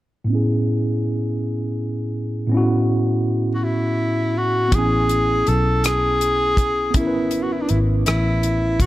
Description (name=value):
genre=slow six-eight R&B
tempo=54 BPM (dotted quarters)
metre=6/8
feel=straight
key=A major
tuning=A4 = 441 Hz
part: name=tine electric piano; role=accompaniment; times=0.2-8.9 s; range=A2 to G#5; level=-21 LUFS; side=right 1 dB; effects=medium stereo tremolo, low-pass filter
part: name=breathy tenor saxophone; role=melody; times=3.5-8.9 s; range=D4 to A4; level=-20 LUFS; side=equal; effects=none
part: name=vintage muted fingered electric bass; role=bass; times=4.7-8.9 s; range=G#1 to B1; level=-21 LUFS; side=equal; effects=none
part: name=damped 70s drum kit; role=drums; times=4.7-8.9 s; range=hi-hat, kick drum, rim click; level=-21 LUFS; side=equal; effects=none
room=light reverb, small room ambience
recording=none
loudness=-17 LUFS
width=side -16 dB against mid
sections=0.3-4.7 A section; 4.7-8.9 B section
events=filter sweep on tine electric piano 0.3-4.7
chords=0.3 Amaj9